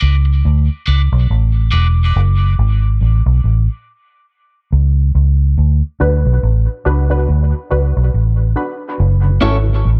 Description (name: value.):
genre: reggae.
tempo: 70 BPM.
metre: 4/4.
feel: swing 58% on 16ths.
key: F# minor.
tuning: A4 = 441 Hz.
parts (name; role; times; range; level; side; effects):
electric guitar at the edge of break-up; accompaniment; 0.0-1.9, 9.4-9.6 s; C#4 to D5; -25 LUFS; equal; high-pass filter, dub echo.
vintage muted fingered electric bass; bass; 0.0-10.0 s; E1 to D2; -14 LUFS; equal; none.
filtered dub chord stab; stabs; 6.0-9.6 s; D4 to B4; -24 LUFS; equal; phaser, high-pass filter, dub echo.
mellow tonewheel organ; accompaniment; 9.2-9.7 s; F#2 to F#4; -27 LUFS; equal; none.
room: digital ambience.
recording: echo-heavy mix.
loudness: -14 LUFS.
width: mono.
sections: 0.0-9.0 A section; 9.0-10.0 B section.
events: break 0.0-9.0.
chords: 0.0 D6; 2.1 F#m; 5.6 D6; 9.0 F#m7.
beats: 0.44 1.29 | 2.15 3.00 3.86 4.71 | 5.57 6.42 7.28 8.13 | 8.99 9.85.